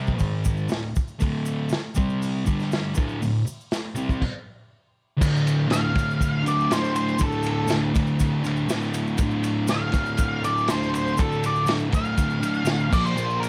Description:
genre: garage rock duo or trio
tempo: 121 BPM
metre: 4/4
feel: straight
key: D minor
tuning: A4 = 440 Hz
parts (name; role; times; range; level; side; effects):
- fuzz guitar; riff; 0.0-13.5 s; D2 to C4; -26 LUFS; equal; distortion
- crunchy breakbeat drum kit; drums; 0.1-13.5 s; crash cymbal, hi-hat, kick drum, ride cymbal, snare drum; -29 LUFS; equal; none
- tube shaker; percussion; 0.1-13.5 s; none; -44 LUFS; equal; none
- octave-fuzz lead guitar; melody; 5.7-13.5 s; A4 to F5; -29 LUFS; equal; distortion
room: moderate small room ambience, RT60 0.5 s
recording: none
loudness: -24 LUFS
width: mono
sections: 0.0-5.2 A section; 5.2-13.5 B section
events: stop 4.2-5.2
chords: 0.2 G#5; 0.7 D5; 2.0 C5; 2.5 G5; 3.0 D5; 4.2 N.C.; 5.2 Dm; 12.9 Bb5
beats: 0.20 0.71 | 1.21 1.71 2.21 2.71 | 3.21 3.71 4.21 4.71 | 5.21 5.71 6.21 6.71 | 7.20 7.70 8.20 8.69 | 9.19 9.69 10.19 10.68 | 11.18 11.68 12.18 12.67 | 13.17

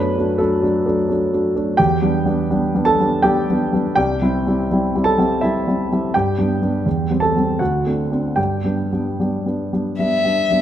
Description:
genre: classical, romantic duo for violin and grand piano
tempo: 82 BPM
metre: 3/4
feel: uneven beats, rubato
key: G major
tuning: A4 = 437 Hz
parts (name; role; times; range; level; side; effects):
- dark grand piano; accompaniment; 0.0-10.6 s; C2 to A5; -16 LUFS; equal; none
- warm violin; melody; 10.0-10.6 s; E5; -17 LUFS; left 3 dB; none
room: moderate concert hall reverb, RT60 2.2 s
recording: close, detailed microphones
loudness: -16 LUFS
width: side -11 dB against mid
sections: 0.0-10.6 A section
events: none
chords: 0.0 D/F#; 1.8 Em7; 4.0 C; 6.1 G; 6.9 C/E; 7.6 D7; 8.4 G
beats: 0.41 1.10 | 1.79 2.50 3.24 | 3.97 4.70 5.42 | 6.14 6.85 7.60 | 8.37 9.20 10.00

